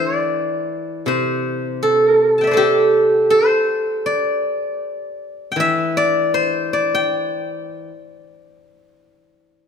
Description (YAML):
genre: chinese traditional, Chinese solo plucked strings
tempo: 73-81 BPM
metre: 4/4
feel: rubato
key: G zhi mode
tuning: A4 = 436 Hz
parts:
  - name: steel-string zither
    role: solo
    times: 0.0-9.7 s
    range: C3 to A5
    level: -16 LUFS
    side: equal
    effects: none
room: moderate scoring stage reverb, RT60 2.1 s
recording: minimal, uncompressed stereo recording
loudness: -15 LUFS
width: side -7 dB against mid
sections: 0.0-9.7 A section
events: none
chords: none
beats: 0.30 | 1.07 1.82 2.58 3.33 | 4.08 4.83 5.58 6.34 | 7.12 7.90 8.70 9.51